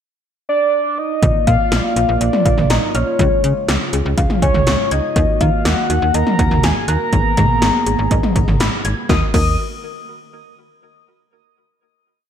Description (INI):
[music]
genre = synth-pop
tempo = 122 BPM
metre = 4/4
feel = straight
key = Eb minor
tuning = A4 = 439 Hz
[part]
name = soft octave-layered synth lead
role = melody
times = 0.5-9.6 s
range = Db5 to Eb6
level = -19 LUFS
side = left 1 dB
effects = chorus, phaser
[part]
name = chorused pulse-width pad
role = sustained chords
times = 1.2-9.1 s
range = Db3 to D5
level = -24 LUFS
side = right 3 dB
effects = none
[part]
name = soft round pluck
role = arpeggios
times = 1.2-9.6 s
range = D3 to Ab6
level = -26 LUFS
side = left 2 dB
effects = chorus, ping-pong delay
[part]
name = slap-like FM bass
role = bass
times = 1.2-9.6 s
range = Ab1 to Eb3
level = -18 LUFS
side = equal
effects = none
[part]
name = 80s electronic pad drums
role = drums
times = 1.2-9.5 s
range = crash cymbal, hi-hat, kick drum, snare drum, toms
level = -18 LUFS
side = equal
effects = gated reverb on snare and toms
[sound]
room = moderate lush hall reverb, RT60 1.9 s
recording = bright 1980s-style digital production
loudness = -13 LUFS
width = side -9 dB against mid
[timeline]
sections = 0.0-1.2 pickup bar; 1.2-9.1 verse; 9.1-11.1 final chord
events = none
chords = 0.0 N.C.; 1.2 Bb; 3.2 Db; 5.2 Ebm; 7.1 Abmadd9; 9.1 Ebm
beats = 0.24 0.73 | 1.23 1.72 2.21 2.70 | 3.19 3.69 4.18 4.67 | 5.16 5.65 6.14 6.63 | 7.13 7.62 8.11 8.60 | 9.09